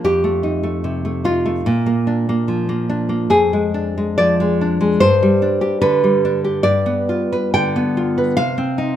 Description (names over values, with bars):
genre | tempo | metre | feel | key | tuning
romantic piece for solo classical guitar | 64-76 BPM | 4/4 | rubato | unclear | A4 = 440 Hz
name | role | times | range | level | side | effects
nylon-string guitar | solo | 0.0-9.0 s | F2 to G5 | -15 LUFS | equal | none
room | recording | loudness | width
moderate recital hall reverb, RT60 1.4 s | minimal, uncompressed stereo recording | -15 LUFS | side -10 dB against mid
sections
0.0-9.0 A section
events
none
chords
0.0 F7; 1.7 Bb; 3.3 Ddim/F; 5.0 G; 6.6 G7; 8.4 Cm